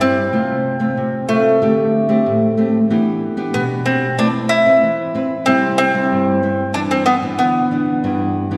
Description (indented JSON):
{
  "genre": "samba",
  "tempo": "93 BPM",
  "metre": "4/4",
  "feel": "straight",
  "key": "C major",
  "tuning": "A4 = 444 Hz",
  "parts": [
    { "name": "mandolin", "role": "melody", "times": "0.0-8.6 s", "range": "A3 to E4", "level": "-19 LUFS", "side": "equal", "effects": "none" },
    { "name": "nylon-string guitar", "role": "accompaniment", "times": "0.0-8.6 s", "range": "G2 to B4", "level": "-20 LUFS", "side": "equal", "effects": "none" }
  ],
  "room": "wet concert hall reverb, RT60 2.0 s",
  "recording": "recorded in a church or concert hall",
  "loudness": "-16 LUFS",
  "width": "mono",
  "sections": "0.0-8.6 A section",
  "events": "none",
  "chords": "0.3 F/C; 1.6 D7sus4; 2.9 Em7; 4.2 Amadd9; 5.5 Cmaj7; 6.8 G6"
}